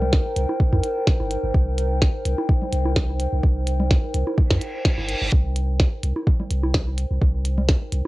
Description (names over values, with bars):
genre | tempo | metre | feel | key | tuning
minimal techno | 127 BPM | 4/4 | swing 54% on 16ths | C minor | A4 = 440 Hz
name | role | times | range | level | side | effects
punchy sub bass | bass | 0.0-8.0 s | G1 to F2 | -23 LUFS | equal | tube saturation, sidechain pumping
congas and bongos | percussion | 0.0-8.1 s | none | -30 LUFS | equal | cassette tape, tape echo
warbly tape-like pad | texture | 0.0-8.1 s | Eb4 to G5 | -28 LUFS | equal | chorus, built-in reverb, sidechain pumping, cassette tape
electronic kick drum | drums | 0.1-7.8 s | none | -19 LUFS | equal | cassette tape
minimal click drum kit | drums | 0.1-8.0 s | hi-hat, snare drum | -25 LUFS | equal | cassette tape
reverse cymbal | sound effects | 4.6-5.3 s | none | -28 LUFS | right 2 dB | none
room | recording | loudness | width
little or no reverb | home recording on cassette | -19 LUFS | side -19 dB against mid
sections
0.0-8.1 A section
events
reverse cymbal 4.6-5.3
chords
0.0 Cm7